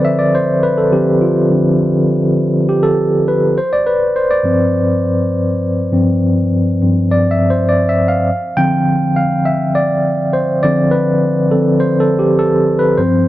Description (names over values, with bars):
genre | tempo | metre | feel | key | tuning
soul | 102 BPM | 4/4 | straight | D dorian | A4 = 440 Hz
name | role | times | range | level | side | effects
tine electric piano | solo | 0.0-13.3 s | G2 to G5 | -12 LUFS | equal | medium tremolo
room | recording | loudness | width
light reverb | none | -12 LUFS | side -15 dB against mid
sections
0.0-13.3 A section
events
tine electric piano solo 0.0-13.3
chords
0.0 Dm7; 3.6 G7sus4; 8.3 Dm7